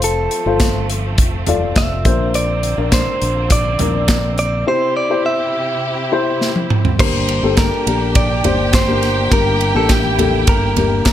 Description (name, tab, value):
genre	piano-driven pop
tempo	103 BPM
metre	4/4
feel	straight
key	unclear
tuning	A4 = 440 Hz
part	direct-recorded clean electric guitar	melody	0.0-11.1 s	G4 to E5	-20 LUFS	right 1 dB	none
part	dark upright piano	accompaniment	0.0-11.1 s	G2 to D5	-20 LUFS	left 5 dB	none
part	warm studio string section	sustained chords	0.0-11.1 s	C3 to G4	-26 LUFS	right 2 dB	none
part	fingered electric bass	bass	0.0-11.1 s	F1 to Bb1	-20 LUFS	equal	none
part	modern studio drum kit	drums	0.0-11.1 s	crash cymbal, hi-hat, kick drum, ride cymbal, snare drum, toms	-16 LUFS	equal	none
part	group handclap	percussion	2.9-11.1 s	none	-27 LUFS	right 5 dB	none
part	rich studio violin section	second line	7.0-11.1 s	G4 to G5	-23 LUFS	right 3 dB	none
room	light reverb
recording	none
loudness	-13 LUFS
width	side -11 dB against mid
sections	0.0-7.0 A section; 7.0-11.1 B section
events	drum fill 6.4-7.0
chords	0.0 F; 2.1 Bbadd9; 4.7 C; 7.0 Gm